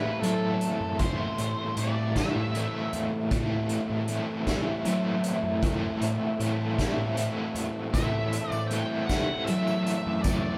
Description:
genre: psychedelic rock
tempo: 52 BPM (dotted quarters)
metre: 6/8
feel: straight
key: A dorian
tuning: A4 = 439 Hz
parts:
  - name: octave-fuzz lead guitar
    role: melody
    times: 0.0-3.0, 7.9-10.6 s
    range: A4 to G5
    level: -36 LUFS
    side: equal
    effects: distortion
  - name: ensemble organ-string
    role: sustained chords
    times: 0.0-10.6 s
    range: C4 to E5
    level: -43 LUFS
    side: equal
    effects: none
  - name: crunchy overdriven guitar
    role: riff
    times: 0.0-10.6 s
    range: A2 to E4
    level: -32 LUFS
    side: equal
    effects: tremolo
  - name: fuzz picked electric bass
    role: bass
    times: 0.2-10.5 s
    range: E2 to F#3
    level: -33 LUFS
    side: equal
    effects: overdrive
  - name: soft-mallet drum kit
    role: drums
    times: 0.2-10.4 s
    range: hi-hat, kick drum, snare drum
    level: -33 LUFS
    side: equal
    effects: none
  - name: tambourine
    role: percussion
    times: 7.9-10.4 s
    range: none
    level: -49 LUFS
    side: equal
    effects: none
room: moderate studio reverb, RT60 0.5 s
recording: band playing live in one room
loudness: -28 LUFS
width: mono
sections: 0.0-10.6 A section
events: none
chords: 0.0 Am

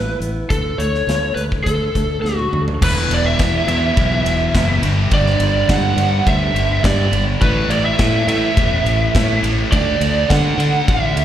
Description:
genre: quiet-loud alternative rock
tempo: 104 BPM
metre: 4/4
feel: straight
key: unclear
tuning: A4 = 440 Hz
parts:
  - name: lead guitar through a small cranked amp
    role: melody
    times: 0.0-11.2 s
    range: F#4 to F#5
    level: -20 LUFS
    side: right 2 dB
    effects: overdrive, slapback echo, analog delay
  - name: fingerpicked steel-string acoustic guitar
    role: arpeggios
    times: 0.0-2.8 s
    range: D3 to F#4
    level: -28 LUFS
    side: right 1 dB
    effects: none
  - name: modern bright fingered electric bass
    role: bass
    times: 0.0-11.2 s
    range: E1 to D3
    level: -19 LUFS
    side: equal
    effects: none
  - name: big rock drum kit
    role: drums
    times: 0.2-11.2 s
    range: crash cymbal, hi-hat, kick drum, ride cymbal, snare drum, toms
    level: -21 LUFS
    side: equal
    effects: none
  - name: overdriven electric guitar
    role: riff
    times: 2.8-11.2 s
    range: E2 to D4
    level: -25 LUFS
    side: left 1 dB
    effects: slapback echo
  - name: sludgy distorted guitar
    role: riff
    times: 2.8-11.2 s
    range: E2 to D4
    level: -25 LUFS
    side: right 8 dB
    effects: overdrive
  - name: thick fuzz guitar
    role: riff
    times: 2.8-11.2 s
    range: E2 to D4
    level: -24 LUFS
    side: left 8 dB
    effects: distortion
room: small room ambience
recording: live gig heard through the venue's PA, recital hall reverb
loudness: -14 LUFS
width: side -11 dB against mid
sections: 0.0-2.8 A section; 2.8-11.2 B section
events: drum fill 2.2-2.8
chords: 0.0 Asus2; 0.5 D; 2.8 E5; 4.8 G5; 7.4 A5; 9.7 D

